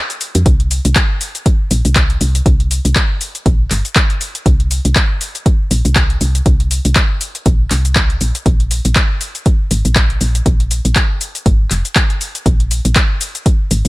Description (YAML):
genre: deep house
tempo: 120 BPM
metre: 4/4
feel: swing 57% on 16ths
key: unclear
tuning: A4 = 440 Hz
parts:
  - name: deep house drum kit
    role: drums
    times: 0.1-13.9 s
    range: handclaps, hi-hat, shaker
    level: -18 LUFS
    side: left 1 dB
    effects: overdrive
  - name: woody FM bass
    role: bass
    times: 0.3-13.9 s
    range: F1 to F2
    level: -14 LUFS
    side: equal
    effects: sidechain pumping
  - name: electronic kick drum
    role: drums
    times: 0.5-13.6 s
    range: none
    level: -13 LUFS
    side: equal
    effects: overdrive
room: digital ambience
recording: none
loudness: -12 LUFS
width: side -20 dB against mid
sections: 0.5-13.9 A section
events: break 0.0-0.5; drop 0.5-13.9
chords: none